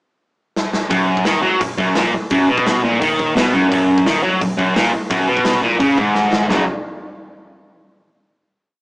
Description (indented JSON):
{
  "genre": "punk rock",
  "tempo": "172 BPM",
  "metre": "4/4",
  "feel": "straight",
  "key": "F# major",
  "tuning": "A4 = 441 Hz",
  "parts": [
    { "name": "big rock drum kit", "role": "drums", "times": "0.6-6.6 s", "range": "hi-hat, kick drum, snare drum, toms", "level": "-21 LUFS", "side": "equal", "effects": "none" },
    { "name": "distorted electric guitar", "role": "riff", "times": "0.9-6.6 s", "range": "F#2 to F#3", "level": "-14 LUFS", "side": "equal", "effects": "distortion" },
    { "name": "overdriven picked electric bass", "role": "bass", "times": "0.9-6.7 s", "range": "F#1 to F#2", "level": "-32 LUFS", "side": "equal", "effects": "none" }
  ],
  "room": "moderate small room reverb, RT60 0.6 s",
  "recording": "rough rehearsal-room recording, tube saturation, small speaker sound",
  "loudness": "-14 LUFS",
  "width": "side -30 dB against mid",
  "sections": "0.0-0.9 pickup bar; 0.9-6.5 riff; 6.5-7.9 final chord",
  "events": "drum fill 0.6-0.9, 6.2-6.5",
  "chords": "0.0 N.C.; 0.9 F#; 6.5 F#5",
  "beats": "0.21 0.56 | 0.91 1.26 1.61 1.96 | 2.31 2.66 3.01 3.36 | 3.71 4.06 4.41 4.75 | 5.10 5.45 5.80 6.15 | 6.50"
}